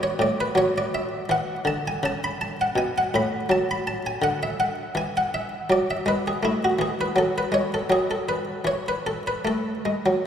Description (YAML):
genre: classical, baroque-style suite movement for harpsichord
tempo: 82 BPM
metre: 4/4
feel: rubato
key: A major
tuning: A4 = 440 Hz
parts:
  - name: buff-stop harpsichord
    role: solo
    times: 0.0-10.3 s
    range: A2 to B5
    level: -22 LUFS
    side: equal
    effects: none
room: wet church reverb, RT60 3.8 s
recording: recorded in a church or concert hall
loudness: -22 LUFS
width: side -8 dB against mid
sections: 0.0-10.3 A section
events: none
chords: 0.0 D5; 0.6 F#m; 3.5 D/F#; 5.0 E; 6.4 A5; 7.9 N.C.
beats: | 0.57 1.29 2.03 2.76 | 3.49 4.22 4.96 5.70 | 6.43 7.16 7.89 8.65 | 9.45 10.26